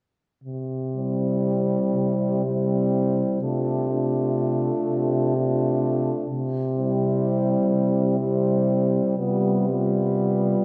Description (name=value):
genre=classical, lyrical piece for horn quartet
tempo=41 BPM (dotted quarters)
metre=6/8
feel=uneven beats, rubato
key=C major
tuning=A4 = 440 Hz
part: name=mellow French horn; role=bass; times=0.4-10.6 s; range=C3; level=-28 LUFS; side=equal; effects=none
part: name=dark French horn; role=melody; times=1.0-10.6 s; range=E4 to F4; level=-32 LUFS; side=equal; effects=none
part: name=mellow French horn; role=second line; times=1.0-10.6 s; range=B3 to D4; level=-30 LUFS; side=equal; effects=none
part: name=warm French horn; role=accompaniment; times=1.0-10.6 s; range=G3 to A3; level=-27 LUFS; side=equal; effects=none
room=wet recital hall reverb, RT60 1.7 s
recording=heard from further back in the room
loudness=-23 LUFS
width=mono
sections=0.4-10.6 A section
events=none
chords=0.4 C; 3.4 Dm7/C; 6.3 C